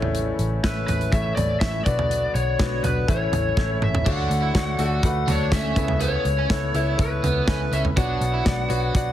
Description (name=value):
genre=piano-driven pop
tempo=123 BPM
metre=4/4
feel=straight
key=D major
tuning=A4 = 439 Hz
part: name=bright concert grand piano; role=accompaniment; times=0.0-9.1 s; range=A2 to E5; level=-28 LUFS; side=left 4 dB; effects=none
part: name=percussive tonewheel organ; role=sustained chords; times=0.0-4.1 s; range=C#3 to F#4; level=-35 LUFS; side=right 2 dB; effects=overdrive, wide subtle chorus
part: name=vintage muted picked electric bass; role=bass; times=0.0-9.1 s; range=A1 to D2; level=-25 LUFS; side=equal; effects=none
part: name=modern studio drum kit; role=drums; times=0.0-9.1 s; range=crash cymbal, hi-hat, kick drum, snare drum, toms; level=-25 LUFS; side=equal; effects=none
part: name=lead guitar through a small cranked amp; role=melody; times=0.6-9.1 s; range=B4 to F#5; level=-26 LUFS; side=left 1 dB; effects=overdrive
part: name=overdriven electric guitar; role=riff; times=4.1-8.9 s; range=B3 to F#4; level=-30 LUFS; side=right 5 dB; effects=none
room=light reverb, studio ambience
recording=heavily compressed radio sound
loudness=-20 LUFS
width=side -11 dB against mid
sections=0.0-4.1 A section; 4.1-9.1 B section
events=drum fill 3.6-4.1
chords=0.0 A; 1.9 Bm; 3.1 A; 4.1 Dmaj7; 5.8 Aadd9/C#; 8.0 Bmadd9